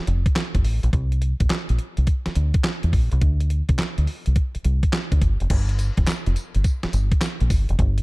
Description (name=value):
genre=R&B, new jack swing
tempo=105 BPM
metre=4/4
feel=swing 66% on 16ths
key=unclear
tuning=A4 = 440 Hz
part: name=deep dub fingered electric bass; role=bass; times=0.1-8.0 s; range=F1 to E2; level=-20 LUFS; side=equal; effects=none
part: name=clean 12-bit digital drum machine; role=drums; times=0.1-8.0 s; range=crash cymbal, handclaps, hi-hat, kick drum, snare drum, tambourine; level=-22 LUFS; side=equal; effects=none
room=little or no reverb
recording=dark, warm production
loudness=-19 LUFS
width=side -23 dB against mid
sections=0.0-5.5 A section; 5.5-8.0 B section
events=none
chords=none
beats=0.36 | 0.93 1.50 2.07 2.64 | 3.21 3.79 4.36 4.93 | 5.50 6.07 6.64 7.21 | 7.79